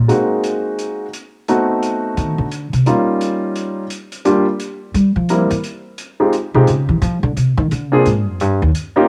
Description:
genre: jazz piano trio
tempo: 173 BPM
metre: 4/4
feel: swing 62% on 8ths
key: Eb mixolydian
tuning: A4 = 440 Hz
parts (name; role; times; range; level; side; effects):
- upright bass; bass; 0.0-0.1, 2.2-2.9, 4.9-8.7 s; Eb2 to G3; -18 LUFS; equal; none
- clear grand piano; melody; 0.1-9.1 s; G3 to Bb4; -18 LUFS; equal; none
- hi-hat; drums; 0.1-8.8 s; none; -35 LUFS; equal; none
room: light reverb, small room ambience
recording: none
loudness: -17 LUFS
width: mono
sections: 0.0-9.1 A section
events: upright bass solo 0.0-9.1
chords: 0.1 Ab7; 1.5 Adim7; 2.9 Eb7; 4.3 Gm7; 4.9 C7; 5.6 N.C.; 7.0 Bb7 (rootless); 8.4 Eb

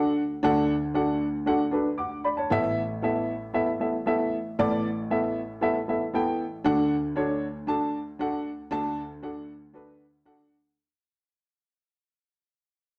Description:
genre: soul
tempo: 116 BPM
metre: 4/4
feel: straight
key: D major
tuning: A4 = 440 Hz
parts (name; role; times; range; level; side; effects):
- dark upright piano; solo; 0.0-10.7 s; A1 to D6; -27 LUFS; equal; slapback echo
room: wet club reverb, RT60 0.9 s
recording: dark, warm production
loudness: -27 LUFS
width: mono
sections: 0.0-6.7 A section; 6.7-10.8 B section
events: fade-out 6.7-10.8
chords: 0.0 D; 2.5 Asus2; 6.7 D

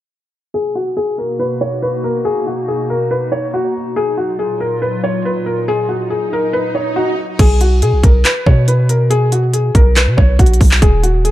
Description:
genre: hip hop, trap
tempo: 140 BPM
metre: 4/4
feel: half-time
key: unclear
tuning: A4 = 444 Hz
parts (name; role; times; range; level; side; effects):
- felt-muted upright piano; melody; 0.5-11.3 s; F#4 to Db5; -17 LUFS; left 1 dB; low-pass filter, tape echo
- hollow soft pad; sustained chords; 0.7-7.4 s; Bb2 to F#4; -23 LUFS; equal; chorus, low-pass filter
- swell; sound effects; 5.5-7.4 s; none; -24 LUFS; right 1 dB; none
- long sustained 808-style bass; bass; 7.4-11.3 s; Eb1 to Cb3; -12 LUFS; equal; none
- trap drum kit; drums; 7.4-11.3 s; crash cymbal, handclaps, hi-hat, kick drum; -11 LUFS; equal; none
room: little or no reverb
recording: dark, warm production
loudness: -12 LUFS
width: side -14 dB against mid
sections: 0.5-7.4 A section; 7.4-11.3 B section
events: filter sweep 0.5-7.4; swell 5.5-7.4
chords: 0.5 Bmaj7; 4.0 Ebmadd9; 7.4 Abm

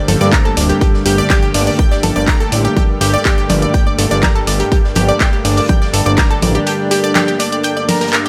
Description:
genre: melodic techno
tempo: 123 BPM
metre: 4/4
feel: straight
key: G minor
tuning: A4 = 443 Hz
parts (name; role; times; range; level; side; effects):
- lush unison pad; sustained chords; 0.0-8.3 s; D3 to G4; -22 LUFS; equal; chorus, sidechain pumping
- analog pluck; arpeggios; 0.0-8.3 s; G4 to Bb6; -20 LUFS; equal; chorus, sidechain pumping, dub echo
- analog drone; drone; 0.0-8.3 s; G2 to G3; -27 LUFS; equal; chorus, sidechain pumping
- fat analog bass; bass; 0.1-6.6 s; D1 to G2; -17 LUFS; equal; sidechain pumping
- house drum kit; drums; 0.1-8.3 s; congas, handclaps, hi-hat; -20 LUFS; equal; sidechain pumping on hats, sidechain pumping on perc
- oversized low-tuned drum kit; drums; 0.1-8.3 s; hi-hat, snare drum; -33 LUFS; equal; none
- electronic kick drum; drums; 0.3-6.3 s; none; -16 LUFS; equal; none
room: light reverb, digital ambience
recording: none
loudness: -13 LUFS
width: mono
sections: 0.0-8.3 A section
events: none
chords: 0.0 Gmadd9

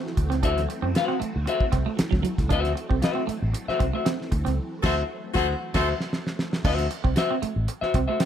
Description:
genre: funk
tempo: 116 BPM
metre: 4/4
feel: straight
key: D mixolydian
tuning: A4 = 436 Hz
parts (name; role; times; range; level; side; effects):
- phased string machine; sustained chords; 0.0-6.6 s; E3 to C4; -36 LUFS; equal; ensemble chorus, phaser
- damped 70s drum kit; drums; 0.1-8.3 s; crash cymbal, hi-hat, kick drum, snare drum; -26 LUFS; equal; none
- clean electric guitar; riff; 0.2-8.3 s; F#3 to D4; -30 LUFS; right 7 dB; warbly pitch drift
- fingered electric bass with an envelope filter; bass; 0.2-8.1 s; A1 to F#2; -27 LUFS; equal; none
- semi-hollow electric guitar; accompaniment; 0.4-8.2 s; F#4 to F#5; -27 LUFS; left 5 dB; none
- clear horn section; second line; 4.8-5.9 s; F#4 to C5; -30 LUFS; equal; none
room: light reverb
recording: none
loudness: -22 LUFS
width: side -9 dB against mid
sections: 0.0-6.6 A section; 6.6-8.3 B section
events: band accent 4.6-6.6; drum fill 5.6-6.6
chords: 0.0 D9

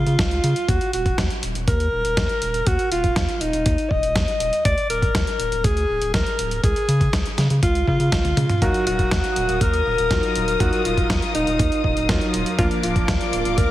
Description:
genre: italo disco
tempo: 121 BPM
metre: 4/4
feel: straight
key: Eb minor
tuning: A4 = 440 Hz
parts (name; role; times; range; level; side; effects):
- breathy alto saxophone; melody; 0.0-13.7 s; Eb4 to Eb5; -22 LUFS; equal; digital delay
- round analog bass; bass; 0.0-13.7 s; D1 to Db3; -24 LUFS; equal; none
- dusty soul sampler-style drum kit; drums; 0.1-13.7 s; hi-hat, snare drum, toms; -27 LUFS; equal; small room ambience
- electronic kick drum; drums; 0.2-13.7 s; none; -23 LUFS; equal; small room ambience
- warm studio string section; sustained chords; 8.6-13.7 s; Bb4 to Eb6; -28 LUFS; left 6 dB; none
- warm electric grand piano; stabs; 8.6-13.7 s; F3 to F5; -26 LUFS; right 1 dB; vintage 12-bit sampler grit
room: light reverb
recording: heavily compressed radio sound, multiband compression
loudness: -18 LUFS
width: side -14 dB against mid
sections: 0.0-13.7 A section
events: drum fill 8.1-8.6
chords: 0.0 Db; 0.7 Ebm; 4.7 Bb/D; 6.6 Db; 8.6 Ebmadd9; 12.6 Bb/D

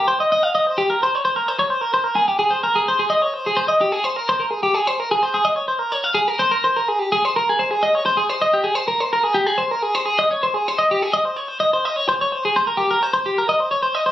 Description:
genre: rock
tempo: 127 BPM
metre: 5/4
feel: straight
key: Ab major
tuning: A4 = 441 Hz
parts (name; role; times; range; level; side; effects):
- twelve-string electric guitar; solo; 0.0-14.1 s; G4 to F5; -17 LUFS; equal; none
room: wet studio reverb, RT60 0.6 s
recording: recorded on a phone in the room, studio reverb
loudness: -17 LUFS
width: side -13 dB against mid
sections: 0.0-1.7 A section; 1.7-11.1 B section; 11.1-14.1 C section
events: none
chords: none

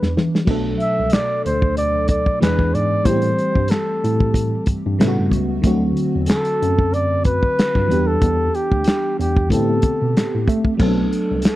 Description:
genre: R&B, neo-soul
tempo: 93 BPM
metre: 4/4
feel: swing 55% on 16ths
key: A dorian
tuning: A4 = 440 Hz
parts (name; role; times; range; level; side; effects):
- breathy flugelhorn; melody; 0.0-11.6 s; G4 to E5; -21 LUFS; equal; none
- FM electric piano with soft pad layer; accompaniment; 0.0-11.6 s; B2 to A4; -22 LUFS; equal; chorus
- tine electric piano; bass; 0.0-11.4 s; B1 to A3; -22 LUFS; equal; medium stereo tremolo
- warm soul drum kit; drums; 0.0-11.6 s; crash cymbal, handclaps, hi-hat, kick drum, snare drum; -18 LUFS; equal; none
room: small room ambience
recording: dry, close 1970s-style studio recording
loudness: -16 LUFS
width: side -16 dB against mid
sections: 0.0-10.8 A section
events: drum fill 0.0-0.5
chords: 0.5 Bm7; 2.4 E7; 3.1 Am7; 5.0 A13; 5.6 D7; 7.9 Em7; 9.5 Am11; 10.8 Bm7

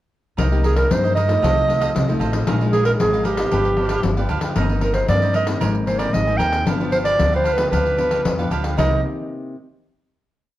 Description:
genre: samba and choro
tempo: 114 BPM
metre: 4/4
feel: straight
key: C minor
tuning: A4 = 444 Hz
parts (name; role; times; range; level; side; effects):
- cavaquinho; accompaniment; 0.4-9.0 s; D4 to Ab5; -28 LUFS; right 5 dB; none
- nylon-string guitar; accompaniment; 0.4-9.5 s; F2 to G4; -27 LUFS; left 2 dB; none
- upright bass; bass; 0.4-9.0 s; G1 to G2; -21 LUFS; equal; none
- pandeiro; percussion; 0.4-8.9 s; none; -24 LUFS; left 3 dB; none
- breathy clarinet; melody; 0.6-9.0 s; G4 to G5; -20 LUFS; right 2 dB; plate reverb
room: light reverb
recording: worn, warbling old tape, cassette tape, warbly pitch drift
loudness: -16 LUFS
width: side -14 dB against mid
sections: 0.4-8.8 A section; 8.8-10.6 final chord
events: none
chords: 0.4 Cm7; 1.4 F7/C; 2.5 Bb7sus4; 3.5 G7; 4.6 Cm7/G; 5.6 Abadd9; 6.7 G7; 8.8 Cm7

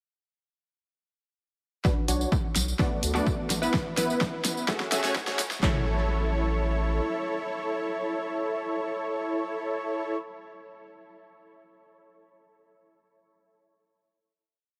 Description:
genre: EDM, festival progressive house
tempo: 127 BPM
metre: 4/4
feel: straight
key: A major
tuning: A4 = 440 Hz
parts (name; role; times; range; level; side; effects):
- supersaw stab; riff; 1.8-10.2 s; A3 to E5; -32 LUFS; equal; sidechain pumping, low-pass filter, delay
- big-room dance drum kit; drums; 1.8-5.7 s; handclaps, kick drum, toms; -30 LUFS; equal; overdrive, studio reverb
- big-room dance drum kit; drums; 1.8-5.6 s; hi-hat, snare drum, tambourine; -34 LUFS; equal; overdrive, studio reverb
- saturated sub bass; bass; 2.1-7.0 s; F#1 to D2; -32 LUFS; equal; sidechain pumping
room: moderate huge ambient reverb, RT60 7.8 s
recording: high-pass filter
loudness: -28 LUFS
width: mono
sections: 1.8-5.6 build; 5.6-9.4 final chord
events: build-up 1.8-5.6; drum fill 1.8-5.6; filter sweep on supersaw synth 1.8-5.6; filter sweep 1.8-5.6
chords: 1.8 Bm; 2.8 D6; 3.7 Asus2; 4.7 F#madd9; 5.6 A

